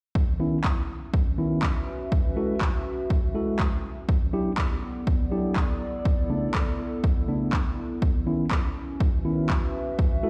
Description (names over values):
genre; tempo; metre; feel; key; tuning
deep house; 122 BPM; 4/4; swing 54% on 16ths; C# phrygian; A4 = 442 Hz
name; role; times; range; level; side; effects
warbly tape-like pad; texture; 1.0-10.3 s; B3 to E5; -36 LUFS; equal; chorus, built-in reverb, sidechain pumping
electronic kick drum; drums; 0.2-10.1 s; none; -27 LUFS; equal; overdrive
mellow tine electric piano; stabs; 0.4-10.3 s; C#3 to A4; -30 LUFS; equal; sidechain pumping, low-pass filter, tape echo
electronic handclaps; drums; 0.6-9.6 s; none; -35 LUFS; equal; overdrive
room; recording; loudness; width
light reverb; played on a big sound system in a bare room, stone room reverb; -26 LUFS; mono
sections
0.2-10.3 A section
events
none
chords
0.2 C#m9; 1.9 F#m9; 4.1 Em9; 5.8 Bm9; 8.0 C#m9; 9.7 F#7sus2